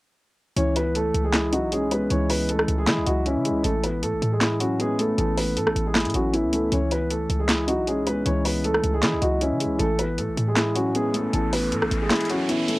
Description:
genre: hip hop, trap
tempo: 156 BPM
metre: 4/4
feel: half-time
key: C# minor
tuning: A4 = 439 Hz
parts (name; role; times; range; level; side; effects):
- dark baby grand piano; melody; 0.6-12.8 s; E3 to C#5; -26 LUFS; right 1 dB; cassette tape
- felt-muted upright piano; accompaniment; 0.6-12.8 s; E3 to D#5; -25 LUFS; left 1 dB; none
- short 808-style bass; bass; 0.6-12.1 s; A1 to E3; -27 LUFS; equal; none
- trap drum kit; drums; 0.6-12.8 s; handclaps, hi-hat, rim click, snare drum; -25 LUFS; equal; cassette tape
- riser; sound effects; 10.7-12.8 s; none; -34 LUFS; right 1 dB; none
room: light reverb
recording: home recording on cassette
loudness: -21 LUFS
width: side -20 dB against mid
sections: 0.6-12.8 A section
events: riser 10.7-12.8; kick muted 12.1-12.8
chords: 0.6 C#madd9; 3.6 Aadd9; 6.7 C#madd9; 9.8 Aadd9

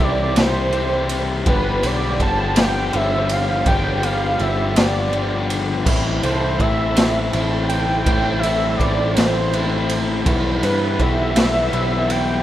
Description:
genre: indie rock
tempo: 55 BPM (dotted quarters)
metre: 6/8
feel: straight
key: unclear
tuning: A4 = 440 Hz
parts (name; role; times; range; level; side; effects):
- wide unison lead; melody; 0.0-12.4 s; B4 to A5; -23 LUFS; right 1 dB; plate reverb
- phased analog pad; sustained chords; 0.0-12.4 s; E4 to B5; -32 LUFS; right 2 dB; none
- overdriven electric guitar; riff; 0.0-12.4 s; G2 to G4; -22 LUFS; left 5 dB; none
- picked electric bass; bass; 0.0-12.4 s; G1 to G2; -24 LUFS; right 1 dB; none
- raw garage drum kit; drums; 0.4-12.3 s; crash cymbal, kick drum, ride cymbal, snare drum; -21 LUFS; right 1 dB; none
- overdriven electric guitar; riff; 5.9-12.4 s; A2 to E4; -29 LUFS; right 8 dB; lush chorus, tape echo
room: light reverb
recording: rough home demo mix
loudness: -16 LUFS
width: side -13 dB against mid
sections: 0.0-12.4 A section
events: none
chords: 0.0 C; 1.5 G7; 5.9 Am7; 10.3 Em/B

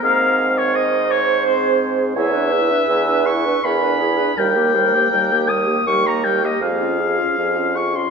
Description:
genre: classical, slow romantic movement for wind quintet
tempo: 82 BPM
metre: 3/4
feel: uneven beats, rubato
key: Ab major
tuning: A4 = 440 Hz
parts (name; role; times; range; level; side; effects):
- mellow hollow silver concert flute; melody; 0.0-8.1 s; F4 to B4; -25 LUFS; left 5 dB; none
- warm oboe; second line; 0.0-8.1 s; C5 to Eb6; -19 LUFS; left 3 dB; none
- mellow French horn; accompaniment; 0.0-8.1 s; G3 to F4; -27 LUFS; equal; none
- warm clarinet; accompaniment; 0.0-7.9 s; G4 to Db5; -24 LUFS; right 9 dB; none
- mellow bassoon; bass; 0.0-8.0 s; Eb2 to Ab2; -20 LUFS; right 4 dB; none
room: wet scoring stage reverb, RT60 1.7 s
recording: minimal, uncompressed stereo recording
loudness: -15 LUFS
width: side -5 dB against mid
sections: 0.0-8.1 A section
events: none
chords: 0.0 Ab69; 2.2 E7; 4.4 Eb; 6.6 Db/F

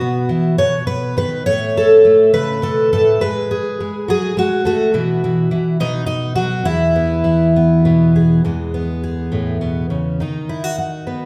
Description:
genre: folk, solo fingerstyle acoustic guitar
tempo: 69 BPM (dotted quarters)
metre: 6/8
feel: rubato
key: E major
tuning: A4 = 440 Hz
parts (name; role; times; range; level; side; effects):
- fingerpicked twelve-string acoustic guitar; solo; 0.0-11.3 s; E2 to C#5; -16 LUFS; equal; none
room: wet recital hall reverb, RT60 1.7 s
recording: recorded in a church or concert hall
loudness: -16 LUFS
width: mono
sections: 0.0-8.4 A section; 8.4-11.3 B section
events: none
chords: 0.0 Bsus4; 0.6 B; 1.5 Aadd9; 3.2 F#sus24; 5.0 Bsus4; 5.8 B5; 6.7 E; 10.2 B/D#

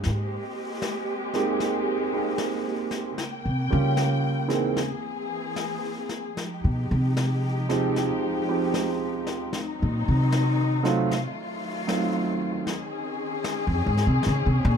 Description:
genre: jazz ballad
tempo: 76 BPM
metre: 4/4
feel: swing 66% on 8ths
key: F minor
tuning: A4 = 438 Hz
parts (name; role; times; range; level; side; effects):
- clear concert grand piano; accompaniment; 0.0-12.7 s; E3 to Ab4; -26 LUFS; right 5 dB; none
- muted studio string section; sustained chords; 0.0-14.8 s; Db3 to G5; -29 LUFS; left 3 dB; none
- brushed snare drum and snare drum; drums; 0.0-14.8 s; none; -35 LUFS; left 4 dB; none
- upright bass; bass; 0.1-14.8 s; F2 to Db3; -23 LUFS; equal; none
room: moderate studio reverb, RT60 0.6 s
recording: dark, warm production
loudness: -24 LUFS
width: side -7 dB against mid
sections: 0.0-14.8 A section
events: upright bass solo 0.0-14.8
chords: 0.0 Abmaj9; 3.2 Gm7b5; 4.8 Caug7; 6.4 Fm9; 9.5 Cm7b5; 11.1 F7b9; 12.7 Bbm11 (rootless)

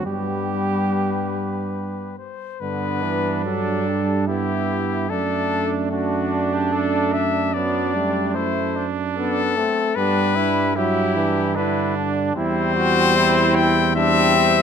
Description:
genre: classical, brass quintet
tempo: 74 BPM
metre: 3/4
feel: rubato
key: G major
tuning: A4 = 439 Hz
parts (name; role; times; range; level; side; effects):
- mellow trumpet; melody; 0.0-14.6 s; F#4 to G5; -23 LUFS; left 8 dB; none
- bright trombone; accompaniment; 0.0-14.6 s; A3 to F#4; -27 LUFS; right 3 dB; none
- dark tuba; bass; 0.0-14.6 s; E2 to G2; -25 LUFS; right 5 dB; none
- clear trumpet; second line; 0.1-14.6 s; C4 to G4; -26 LUFS; right 9 dB; none
- warm French horn; accompaniment; 0.1-14.6 s; D3 to B3; -26 LUFS; left 4 dB; none
room: moderate concert hall reverb, RT60 1.9 s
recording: close, detailed microphones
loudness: -18 LUFS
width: side -7 dB against mid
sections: 0.0-2.6 A section; 2.6-14.6 B section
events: none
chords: 0.1 G; 5.1 D/F#; 10.0 G; 12.4 C/E

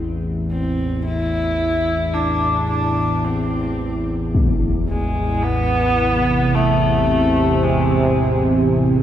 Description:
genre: dark ambient drone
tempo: 55 BPM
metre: 4/4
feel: straight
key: A harmonic minor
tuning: A4 = 440 Hz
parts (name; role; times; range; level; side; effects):
- analog drone; drone; 0.0-9.0 s; A1 to E2; -21 LUFS; left 1 dB; chorus
- rich horsehead fiddle; melody; 0.5-8.4 s; G#3 to E4; -21 LUFS; left 1 dB; shimmer reverb, diffuse ambient delay
- impact; percussion; 4.3-4.6 s; none; -21 LUFS; left 1 dB; low-pass filter on sfx
- sweeping resonant pad; sustained chords; 6.1-9.0 s; C3 to G#4; -17 LUFS; right 3 dB; chorus, shimmer reverb
room: wet lush hall reverb, RT60 2.8 s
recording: dreamy mix soaked in reverb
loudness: -16 LUFS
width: side -10 dB against mid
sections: 0.0-9.0 A section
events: none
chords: 0.0 Am; 4.3 Ammaj7

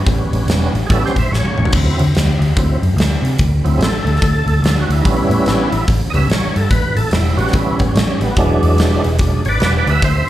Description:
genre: blues rock power trio and southern rock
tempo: 145 BPM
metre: 4/4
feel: swing 63% on 8ths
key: A mixolydian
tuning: A4 = 440 Hz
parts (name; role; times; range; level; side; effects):
- overdriven tonewheel organ; sustained chords; 0.0-10.3 s; E3 to E5; -18 LUFS; right 2 dB; chorus vibrato, slow rotary speaker
- vintage muted picked electric bass; bass; 0.0-10.2 s; E1 to D3; -16 LUFS; equal; none
- huge arena drum kit; drums; 0.1-10.1 s; crash cymbal, hi-hat, kick drum, snare drum, toms; -17 LUFS; equal; none
room: light reverb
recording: live gig heard through the venue's PA, club reverb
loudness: -13 LUFS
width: side -13 dB against mid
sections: 0.0-10.3 A section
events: tonewheel organ solo 0.0-10.3; drum fill 1.3-1.7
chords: 0.0 A7; 1.7 D7; 5.0 A7; 8.4 E7

